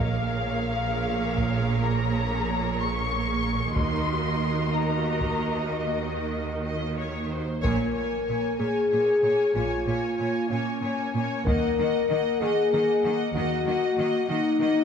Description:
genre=cinematic, epic orchestral film score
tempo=63 BPM (dotted quarters)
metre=6/8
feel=straight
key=Bb minor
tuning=A4 = 440 Hz
part: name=dark symphonic violin section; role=melody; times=0.0-14.8 s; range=Eb5 to Db6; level=-32 LUFS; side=left 4 dB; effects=none
part: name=rich symphonic violin section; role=second line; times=0.0-14.8 s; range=Bb4 to Eb5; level=-33 LUFS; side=left 1 dB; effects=none
part: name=rich symphonic viola section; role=accompaniment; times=0.0-14.8 s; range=Bb3 to Ab4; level=-32 LUFS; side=right 3 dB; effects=none
part: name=clear symphonic cello section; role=bass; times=0.0-14.7 s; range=Bb2 to Eb3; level=-31 LUFS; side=right 3 dB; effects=none
part: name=rich symphonic double bass section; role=bass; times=0.0-13.6 s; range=Bb1 to Eb2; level=-31 LUFS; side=right 4 dB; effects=none
part: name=solo taiko drums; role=drums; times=1.4-12.7 s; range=none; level=-30 LUFS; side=equal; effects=none
part: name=mellow French horn section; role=sustained chords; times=7.6-14.8 s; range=Db4 to Bb4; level=-24 LUFS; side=left 3 dB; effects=none
room=wet scoring stage reverb, RT60 2.1 s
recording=none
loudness=-23 LUFS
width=side -7 dB against mid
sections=0.0-7.6 A section; 7.6-14.8 A section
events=band accent 7.6-8.3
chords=0.0 Bbm7; 3.8 Ebm; 7.6 Bbm7; 11.5 Ebm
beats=0.89 | 1.85 2.81 | 3.76 4.72 | 5.69 6.67 | 7.64 8.59 | 9.54 10.49 | 11.46 12.40 | 13.34 14.28

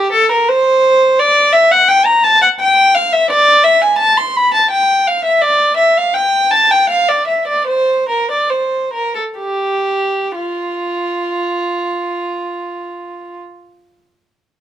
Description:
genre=classical, baroque-style suite movement for unaccompanied violin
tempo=60-86 BPM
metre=3/4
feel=rubato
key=F major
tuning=A4 = 440 Hz
part: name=dark violin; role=solo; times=0.0-13.4 s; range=F4 to C6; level=-11 LUFS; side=equal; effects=none
room=light reverb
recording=dark, warm production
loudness=-11 LUFS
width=side -11 dB against mid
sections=0.0-10.4 A section; 10.4-14.6 B section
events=slowing down 4.3-10.4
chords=none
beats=0.47 | 1.17 1.88 2.58 | 3.29 3.99 4.70 | 5.42 6.17 6.92 | 7.70 8.51 9.39 | 10.35 11.30 12.24 | 13.18

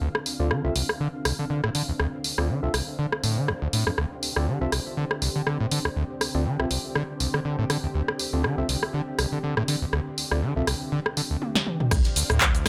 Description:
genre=acid house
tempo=121 BPM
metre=4/4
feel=swing 55% on 16ths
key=D minor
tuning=A4 = 440 Hz
part: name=string machine, full ensemble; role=sustained chords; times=0.0-12.7 s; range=D3 to F5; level=-36 LUFS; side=equal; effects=ensemble chorus, sidechain pumping
part: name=overdriven acid bass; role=riff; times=0.0-12.7 s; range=C2 to D3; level=-30 LUFS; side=equal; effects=distortion, analog chorus, vintage 12-bit sampler grit, sidechain pumping, tape echo
part: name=cloth-damped thuddy drum kit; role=drums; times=0.0-12.7 s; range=ride cymbal, snare drum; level=-52 LUFS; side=equal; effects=none
part: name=punchy analog drum machine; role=drums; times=0.1-12.7 s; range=cabasa, crash cymbal, handclaps, hi-hat, rim click, snare drum, toms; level=-28 LUFS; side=equal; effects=none
part: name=percussive organ stab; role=stabs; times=0.4-10.7 s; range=C4 to E5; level=-35 LUFS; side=equal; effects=chorus, tape echo
part: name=saturated sub bass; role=bass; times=11.9-12.7 s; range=D2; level=-27 LUFS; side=equal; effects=sidechain pumping
part: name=electronic kick drum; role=drums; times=11.9-12.5 s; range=none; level=-26 LUFS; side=equal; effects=none
room=moderate studio reverb, RT60 0.6 s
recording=none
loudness=-26 LUFS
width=mono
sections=0.0-11.9 A section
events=drum fill 11.4-11.9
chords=0.0 Dm7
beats=| 0.01 0.51 1.00 1.50 | 2.00 2.49 2.99 3.48 | 3.98 4.47 4.97 5.47 | 5.96 6.46 6.95 7.45 | 7.95 8.44 8.94 9.43 | 9.93 10.43 10.92 11.42 | 11.91 12.41

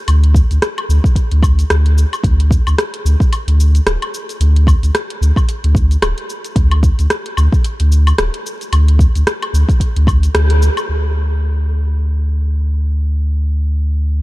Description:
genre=organic downtempo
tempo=111 BPM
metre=4/4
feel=swing 57% on 16ths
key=unclear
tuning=A4 = 440 Hz
part: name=warm sub bass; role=bass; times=0.1-14.2 s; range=D1 to D2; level=-12 LUFS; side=equal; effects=none
part: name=afro-pop drum kit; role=drums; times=0.1-10.9 s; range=cabasa, hi-hat, rim click, woodblock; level=-21 LUFS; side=left 1 dB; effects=none
part: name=electronic kick drum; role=drums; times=0.3-10.2 s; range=none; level=-13 LUFS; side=equal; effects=none
room=little or no reverb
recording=dark, warm production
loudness=-12 LUFS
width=side -19 dB against mid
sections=0.0-10.9 A section; 10.9-14.2 B section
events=band accent 10.3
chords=none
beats=| 0.08 0.62 1.16 1.70 | 2.24 2.78 3.32 3.86 | 4.40 4.94 5.48 6.02 | 6.56 7.10 7.64 8.18 | 8.72 9.27 9.81 10.35 | 10.89 11.43 11.97 12.51 | 13.05 13.59 14.13

